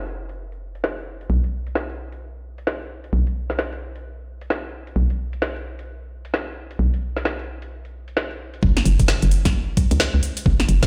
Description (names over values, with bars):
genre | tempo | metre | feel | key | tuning
UK garage, two-step garage | 131 BPM | 4/4 | swing 61% on 16ths | unclear | A4 = 440 Hz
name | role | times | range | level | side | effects
hollow knocking FM bass | bass | 0.0-10.9 s | F#1 to C#2 | -26 LUFS | equal | sidechain pumping
garage drum kit | drums | 0.1-10.9 s | hi-hat, snare drum | -27 LUFS | equal | overdrive, low-pass filter on snare, low-pass filter on hats
electronic kick drum | drums | 8.6-10.9 s | none | -21 LUFS | equal | overdrive
room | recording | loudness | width
light reverb, digital ambience | played on a big sound system in a bare room, stone room reverb | -22 LUFS | mono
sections
0.0-8.6 A section; 8.6-10.9 B section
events
drop 8.6-10.9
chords
none